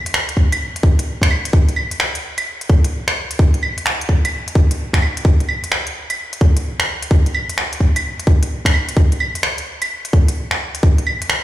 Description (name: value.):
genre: future garage.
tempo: 129 BPM.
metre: 4/4.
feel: swing 64% on 16ths.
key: none.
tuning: none.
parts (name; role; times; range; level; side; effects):
organic electronic drum kit; drums; 0.1-11.4 s; claves, finger snaps, hi-hat; -20 LUFS; equal; none.
electronic kick drum; drums; 0.4-11.0 s; none; -12 LUFS; equal; none.
room: little or no reverb.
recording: played on a big sound system in a bare room, large studio reverb.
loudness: -15 LUFS.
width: side -14 dB against mid.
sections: 0.0-11.4 A section.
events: none.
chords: none.